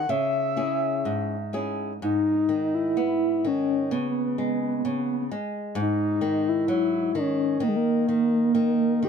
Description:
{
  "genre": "fado-style ballad",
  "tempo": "64 BPM",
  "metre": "2/4",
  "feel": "rubato",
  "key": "G# minor",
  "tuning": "A4 = 440 Hz",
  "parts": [
    { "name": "breathy flute-like synth lead", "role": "melody", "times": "0.0-9.1 s", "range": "G#3 to F#5", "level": "-23 LUFS", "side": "equal", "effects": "chorus" },
    { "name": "flamenco guitar", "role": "accompaniment", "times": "0.0-9.1 s", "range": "G#2 to G#4", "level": "-29 LUFS", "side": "left 2 dB", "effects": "none" }
  ],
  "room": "light reverb",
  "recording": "close, detailed microphones",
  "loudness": "-22 LUFS",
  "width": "side -6 dB against mid",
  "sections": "0.0-2.0 A section; 2.0-9.1 B section",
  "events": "none",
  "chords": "0.1 C#m; 2.0 G#m; 3.9 C#5; 5.8 G#5; 7.6 N.C.",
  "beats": "| 0.07 1.05 | 2.01 2.96 | 3.92 4.84 | 5.75 6.67 | 7.60 8.54"
}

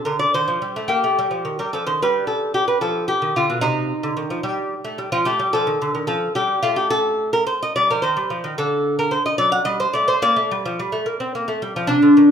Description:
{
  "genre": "classical, baroque-style dance for lute",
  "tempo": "73 BPM (dotted quarters)",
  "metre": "12/8",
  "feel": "rubato",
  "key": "G minor from 5.3 s",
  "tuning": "A4 = 436 Hz",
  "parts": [
    { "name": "lute", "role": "solo", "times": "0.0-12.3 s", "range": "B2 to F#5", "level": "-17 LUFS", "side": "equal", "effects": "none" }
  ],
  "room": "light reverb",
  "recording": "minimal, uncompressed stereo recording",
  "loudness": "-18 LUFS",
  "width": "side -8 dB against mid",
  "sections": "0.0-12.3 A section",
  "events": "none",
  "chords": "0.0 Cm; 2.0 G; 3.6 Cm; 5.3 Am7b5; 8.6 D; 10.2 Gm",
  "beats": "0.34 1.18 | 2.01 2.83 3.64 4.45 | 5.27 6.09 6.91 7.76 | 8.59 9.40 10.22 11.07 | 11.91"
}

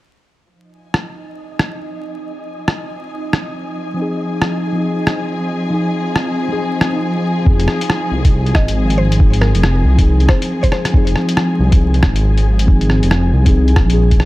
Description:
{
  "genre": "future garage",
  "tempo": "138 BPM",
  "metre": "4/4",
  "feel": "swing 61% on 16ths",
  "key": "F minor",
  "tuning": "A4 = 439 Hz",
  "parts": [
    { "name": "dark symphonic string section", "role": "sustained chords", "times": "0.5-14.3 s", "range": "F3 to Ab5", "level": "-23 LUFS", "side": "left 1 dB", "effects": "vintage 12-bit sampler grit, sidechain pumping" },
    { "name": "wind-like tuned noise texture", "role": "texture", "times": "1.0-14.3 s", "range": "Ab3 to Ab5", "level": "-29 LUFS", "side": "right 2 dB", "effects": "built-in reverb" },
    { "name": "lo-fi sampler-style drum kit", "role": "drums", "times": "0.9-14.3 s", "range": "hi-hat, rim click", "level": "-19 LUFS", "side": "equal", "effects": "studio reverb" },
    { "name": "muted felt-like synth keys", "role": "accompaniment", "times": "3.9-14.3 s", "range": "F3 to Ab4", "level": "-20 LUFS", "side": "left 1 dB", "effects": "chorus, vintage 12-bit sampler grit, sidechain pumping, tape echo" },
    { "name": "dark detuned saw bass", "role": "bass", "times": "7.5-14.3 s", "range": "F1 to C2", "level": "-13 LUFS", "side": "equal", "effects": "sidechain pumping" },
    { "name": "electronic kick drum", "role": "drums", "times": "7.5-14.2 s", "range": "none", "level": "-12 LUFS", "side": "equal", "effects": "studio reverb" },
    { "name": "mallet-like synth pluck", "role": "melody", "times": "8.5-10.8 s", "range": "Bb4 to Eb5", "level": "-25 LUFS", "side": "right 1 dB", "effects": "chorus, digital delay" }
  ],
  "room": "digital ambience",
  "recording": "dark, warm production, vinyl crackle",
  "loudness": "-13 LUFS",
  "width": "side -18 dB against mid",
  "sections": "0.5-7.5 A section; 7.5-14.3 B section",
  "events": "fade-in on string section 0.5-7.5",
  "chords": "0.5 Fm7",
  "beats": "| 0.51 0.94 1.38 1.81 | 2.25 2.68 3.12 3.55 | 3.98 4.42 4.85 5.29 | 5.72 6.16 6.59 7.03 | 7.46 7.90 8.33 8.77 | 9.20 9.64 10.07 10.51 | 10.94 11.38 11.81 12.25 | 12.68 13.12 13.55 13.98"
}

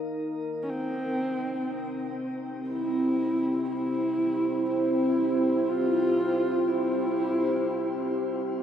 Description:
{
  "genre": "dark ambient drone",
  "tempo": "60 BPM",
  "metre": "4/4",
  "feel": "straight",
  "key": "C major",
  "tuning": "A4 = 439 Hz",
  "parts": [
    { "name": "deep dark ambient pad", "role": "sustained chords", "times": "0.0-8.6 s", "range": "C4 to F5", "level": "-28 LUFS", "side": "equal", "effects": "chorus, built-in reverb, shimmer reverb" },
    { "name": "dark horsehead fiddle", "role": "melody", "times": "0.6-8.2 s", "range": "C4 to F4", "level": "-27 LUFS", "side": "right 1 dB", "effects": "shimmer reverb, tape echo" }
  ],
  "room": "wet huge ambient reverb, RT60 8.3 s",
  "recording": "dark, warm production",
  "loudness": "-25 LUFS",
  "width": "side -9 dB against mid",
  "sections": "0.0-8.6 A section",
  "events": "none",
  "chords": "0.0 Eb5; 0.7 C",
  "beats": "| 0.69 1.69 2.69 3.69 | 4.69 5.69 6.69 7.69"
}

